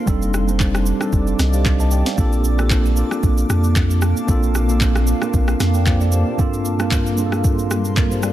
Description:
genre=amapiano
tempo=114 BPM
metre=4/4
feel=swing 55% on 16ths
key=unclear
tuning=A4 = 440 Hz
part: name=mellow tine electric piano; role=accompaniment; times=0.0-8.3 s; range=G2 to A5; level=-21 LUFS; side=right 1 dB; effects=medium stereo tremolo
part: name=granular cloud pad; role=sustained chords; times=0.0-8.3 s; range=G3 to D6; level=-26 LUFS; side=right 1 dB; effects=built-in reverb, sidechain pumping
part: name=punchy sub bass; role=bass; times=0.1-6.2 s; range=F1 to F2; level=-18 LUFS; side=equal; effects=none
part: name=smooth R&B drum kit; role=drums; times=0.1-8.3 s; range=handclaps, kick drum, rim click, shaker, snare drum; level=-20 LUFS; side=equal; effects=overdrive
room=little or no reverb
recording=dense, heavily limited modern master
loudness=-15 LUFS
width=side -13 dB against mid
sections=0.0-8.3 A section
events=none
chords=0.1 F13; 2.2 Bbmaj7; 6.4 Gm11

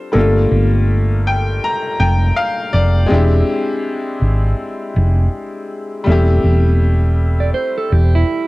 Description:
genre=hip hop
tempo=81 BPM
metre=4/4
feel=swing 62% on 16ths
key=unclear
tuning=A4 = 440 Hz
part: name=felt-muted upright piano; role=melody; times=0.0-2.3 s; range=A4 to C5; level=-23 LUFS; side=right 1 dB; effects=tape echo
part: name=bright upright piano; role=accompaniment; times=0.0-8.5 s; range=G3 to Bb5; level=-19 LUFS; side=left 2 dB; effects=cassette tape
part: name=hollow-body short-scale fingered electric bass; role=bass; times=0.1-8.2 s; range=E1 to G#1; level=-13 LUFS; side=equal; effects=none
part: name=mellow electric guitar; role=second line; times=7.4-8.5 s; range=E4 to D5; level=-19 LUFS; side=right 4 dB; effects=tape echo
room=light reverb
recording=cassette tape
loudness=-13 LUFS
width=side -20 dB against mid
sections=0.0-8.5 A section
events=none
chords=0.1 Gm9; 3.1 E7alt; 6.1 Am7/E

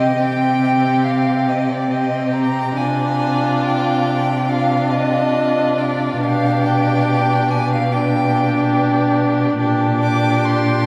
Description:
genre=classical, slow romantic movement for string quartet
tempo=70 BPM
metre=4/4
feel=rubato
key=unclear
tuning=A4 = 440 Hz
part: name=bright violin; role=melody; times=0.0-10.9 s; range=D5 to D6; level=-24 LUFS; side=equal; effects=none
part: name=clear violin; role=second line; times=0.0-10.9 s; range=F4 to G4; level=-26 LUFS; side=equal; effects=none
part: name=clear viola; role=accompaniment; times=0.0-10.9 s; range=C4 to D4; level=-22 LUFS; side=equal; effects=none
part: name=rich cello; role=bass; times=0.0-10.9 s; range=Bb2 to C3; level=-22 LUFS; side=equal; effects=none
room=wet cathedral reverb, RT60 5.8 s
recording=recorded in a church or concert hall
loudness=-17 LUFS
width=mono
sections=0.0-10.9 A section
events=none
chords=0.0 Cm; 2.8 Dm7b5/C; 6.2 G/B; 9.6 Gm/Bb

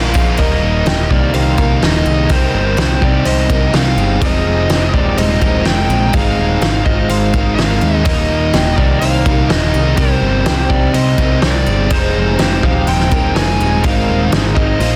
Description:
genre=rock, shoegaze and dream pop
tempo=125 BPM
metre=4/4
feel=straight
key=Eb major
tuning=A4 = 440 Hz
part: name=fuzz lead guitar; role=melody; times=0.0-15.0 s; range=C5 to Ab5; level=-22 LUFS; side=equal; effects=distortion, analog delay
part: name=picked twelve-string acoustic guitar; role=arpeggios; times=0.0-15.0 s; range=F4 to C5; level=-27 LUFS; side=equal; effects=analog chorus, analog delay
part: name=biting overdriven guitar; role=riff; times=0.0-15.0 s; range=Eb2 to G4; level=-23 LUFS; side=equal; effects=subtle chorus
part: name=overdriven electric guitar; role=riff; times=0.0-15.0 s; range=Eb2 to G4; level=-22 LUFS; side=equal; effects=reverse reverb
part: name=overdriven picked electric bass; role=bass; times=0.0-15.0 s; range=Eb1 to Eb2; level=-19 LUFS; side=equal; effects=none
part: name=loose indie drum kit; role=drums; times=0.1-14.9 s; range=crash cymbal, hi-hat, kick drum, snare drum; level=-19 LUFS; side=equal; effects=none
room=little or no reverb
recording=dense, heavily limited modern master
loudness=-14 LUFS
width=mono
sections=0.4-15.0 A section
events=none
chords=0.4 Eb; 2.3 Cm7; 4.2 Fm9; 6.1 Ab6; 8.1 Eb; 10.0 Cm7; 11.9 Fm9; 13.8 Ab6

